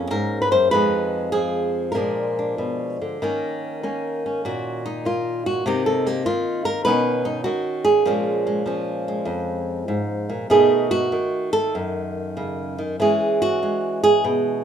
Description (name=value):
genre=solo jazz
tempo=98 BPM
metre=4/4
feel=swing 67% on 8ths, rubato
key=Eb minor from 3.2 s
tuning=A4 = 440 Hz
part: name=flamenco guitar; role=solo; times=0.0-14.6 s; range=F2 to C5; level=-19 LUFS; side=right 1 dB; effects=none
room=light reverb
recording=minimal, uncompressed stereo recording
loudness=-19 LUFS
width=side -8 dB against mid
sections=0.0-3.2 A section; 3.2-14.6 B section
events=nylon-string guitar solo 3.2-14.6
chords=0.0 Bbm9; 0.7 Fm7b5; 1.9 Bb7b9; 3.2 Eb5; 5.7 Cm7; 6.9 Badd9; 8.1 Bbm7; 10.5 B7; 13.0 E6